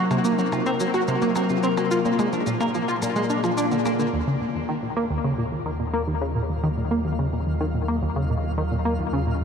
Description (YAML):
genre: ambient, sequencer-driven space music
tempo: 108 BPM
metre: 4/4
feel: straight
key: Eb minor from 4.1 s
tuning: A4 = 440 Hz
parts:
  - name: evolving wavetable pad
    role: sustained chords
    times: 0.0-9.4 s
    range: Bb2 to Eb5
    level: -28 LUFS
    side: left 1 dB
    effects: chorus, built-in reverb, phaser
  - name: clean electric guitar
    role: arpeggios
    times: 0.0-4.1 s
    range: F3 to Bb4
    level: -30 LUFS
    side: moving between left 2 dB and right 5 dB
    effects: auto-pan, ping-pong delay, shimmer reverb
  - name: tight sequenced synth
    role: riff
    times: 0.0-9.4 s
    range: Eb2 to Gb4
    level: -24 LUFS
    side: equal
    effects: chorus, cassette tape, ping-pong delay, shimmer reverb
  - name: shaker and percussion blips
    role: percussion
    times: 0.1-4.1 s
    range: none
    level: -37 LUFS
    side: left 2 dB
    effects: ping-pong delay
  - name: warm sub bass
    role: bass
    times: 4.1-9.4 s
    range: Eb2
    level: -28 LUFS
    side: equal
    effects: none
  - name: twinkling granular texture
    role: texture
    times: 5.6-9.4 s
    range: F4 to F5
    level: -41 LUFS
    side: right 2 dB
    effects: built-in reverb, shimmer reverb
room: wet huge ambient reverb, RT60 8.6 s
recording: dark, warm production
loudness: -21 LUFS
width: side -6 dB against mid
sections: 0.0-4.1 A section; 4.1-9.4 B section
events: fade-in on ambient pad 4.1-9.4; fade-in on synth texture 4.1-9.4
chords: 0.0 Cm7b5; 1.9 Bb7; 4.1 Ebmadd9